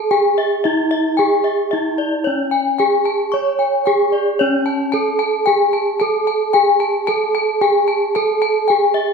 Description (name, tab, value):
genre	gamelan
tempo	112 BPM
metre	4/4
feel	straight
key	unclear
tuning	A4 = 441 Hz
part	gamelan-type bronze metallophone	melody	0.0-9.1 s	C#4 to C#5	-16 LUFS	right 2 dB	none
part	gamelan-type bronze metallophone	arpeggios	0.1-9.1 s	C#5 to C#6	-18 LUFS	left 5 dB	none
room	wet recital hall reverb, RT60 1.5 s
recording	minimal, uncompressed stereo recording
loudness	-14 LUFS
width	side -5 dB against mid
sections	0.0-4.4 A section; 4.4-9.1 A section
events	none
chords	none